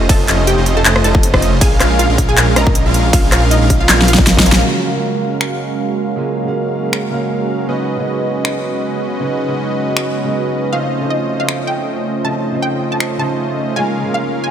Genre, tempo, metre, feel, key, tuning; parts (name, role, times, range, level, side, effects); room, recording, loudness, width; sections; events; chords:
future bass; 158 BPM; 4/4; swing 55% on 16ths, half-time; F# major; A4 = 441 Hz
airy dreamy lead; arpeggios; 0.0-4.6 s; Eb5 to E#5; -25 LUFS; equal; chorus, sidechain pumping, tape echo
big bright polysynth; riff; 0.0-14.5 s; G#3 to E#5; -19 LUFS; right 2 dB; sidechain pumping
wide detuned saw bass; bass; 0.0-4.6 s; F1 to A#1; -15 LUFS; equal; chorus, sidechain pumping
wide unison pluck; melody; 0.1-4.3, 10.7-14.5 s; D#4 to A#5; -21 LUFS; right 1 dB; sidechain pumping, tape echo
big-room dance drum kit; drums; 0.1-13.1 s; finger snaps, handclaps, hi-hat, ride cymbal, rim click, snare drum; -15 LUFS; equal; overdrive
electronic kick drum; drums; 0.1-4.4 s; -14 LUFS; equal; overdrive
warm concert grand piano; accompaniment; 4.6-14.5 s; C#3 to E#5; -22 LUFS; right 2 dB; sidechain pumping, tape echo
shimmering ambient pad; sustained chords; 5.7-14.5 s; C#3 to E#5; -27 LUFS; equal; chorus, built-in reverb, phaser, sidechain pumping
light reverb; -13 LUFS; side -9 dB against mid
0.0-4.7 A section; 4.7-14.5 B section
drop 0.0-4.7; drum fill 3.9-4.7; band accent 4.5; filter sweep on analog polysynth 4.7-14.5; filter sweep on ambient pad 4.7-14.5
0.0 F7b13; 1.6 A#m7; 4.7 F#maj9; 7.7 C#9sus4; 10.7 F7b13; 13.8 A#m7